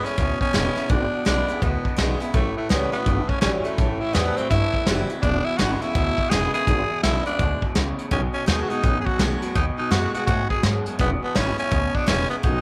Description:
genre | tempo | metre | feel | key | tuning
rockabilly | 166 BPM | 4/4 | swing 64% on 8ths | E mixolydian | A4 = 440 Hz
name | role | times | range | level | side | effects
breathy tenor saxophone | melody | 0.0-12.6 s | A3 to G#4 | -28 LUFS | equal | none
picked steel-string acoustic guitar | accompaniment | 0.0-12.6 s | E2 to F#4 | -33 LUFS | equal | none
electric guitar through a small old amp | riff | 0.0-12.6 s | E2 to G#3 | -32 LUFS | equal | phaser
upright bass | bass | 0.0-12.6 s | E1 to A2 | -28 LUFS | equal | none
vintage brush drum kit | drums | 0.1-12.5 s | hi-hat, kick drum, snare drum | -27 LUFS | equal | none
room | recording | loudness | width
light reverb, studio reverb | none | -22 LUFS | mono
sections
0.0-12.6 A section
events
none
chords
0.0 E7; 2.3 A7; 3.8 Am7; 5.2 E7; 8.1 B7; 11.0 E7

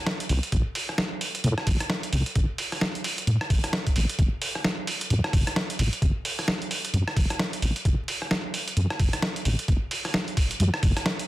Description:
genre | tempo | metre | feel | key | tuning
UK garage, two-step garage | 131 BPM | 4/4 | swing 60% on 16ths | F# minor | A4 = 439 Hz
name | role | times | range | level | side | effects
boom bap sampler-style drum kit | drums | 0.1-11.3 s | hi-hat, rim click, snare drum | -27 LUFS | right 1 dB | soft clipping on snare
deep soft wobble bass | bass | 0.3-10.9 s | F#1 to A2 | -24 LUFS | equal | chorus, sidechain pumping
electronic kick drum | drums | 0.5-10.9 s | none | -24 LUFS | equal | none
room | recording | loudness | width
light reverb | dense, heavily limited modern master, vinyl crackle | -23 LUFS | side -16 dB against mid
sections
0.0-11.3 A section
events
none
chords
none

